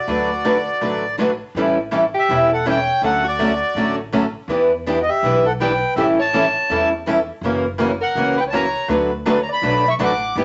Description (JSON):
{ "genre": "acoustic string swing (jazz manouche)", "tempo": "164 BPM", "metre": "4/4", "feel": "swing 60% on 8ths", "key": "D major", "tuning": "A4 = 440 Hz", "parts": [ { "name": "accordion", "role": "melody", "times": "0.0-10.4 s", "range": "D5 to D6", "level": "-22 LUFS", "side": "equal", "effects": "none" }, { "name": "warm soprano saxophone", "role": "second line", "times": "0.0-10.4 s", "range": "F#4 to F#5", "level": "-27 LUFS", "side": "equal", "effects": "none" }, { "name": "picked old ladder-braced acoustic guitar", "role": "accompaniment", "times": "0.1-10.4 s", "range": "C#3 to B4", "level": "-22 LUFS", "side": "equal", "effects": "none" }, { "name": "picked steel-string acoustic guitar", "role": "accompaniment", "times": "0.1-10.4 s", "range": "D3 to B4", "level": "-29 LUFS", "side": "equal", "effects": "none" }, { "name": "upright bass", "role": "bass", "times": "0.1-10.4 s", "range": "E1 to E2", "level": "-32 LUFS", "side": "equal", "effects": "none" } ], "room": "moderate studio reverb, RT60 0.7 s", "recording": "nothing above 7.9 kHz", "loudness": "-19 LUFS", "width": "mono", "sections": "0.0-1.6 A section; 1.6-10.4 B section", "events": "none", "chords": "0.1 D6; 1.6 A7; 3.0 Dmaj7; 4.5 Em7; 6.0 A7; 7.4 F#7; 8.9 D6" }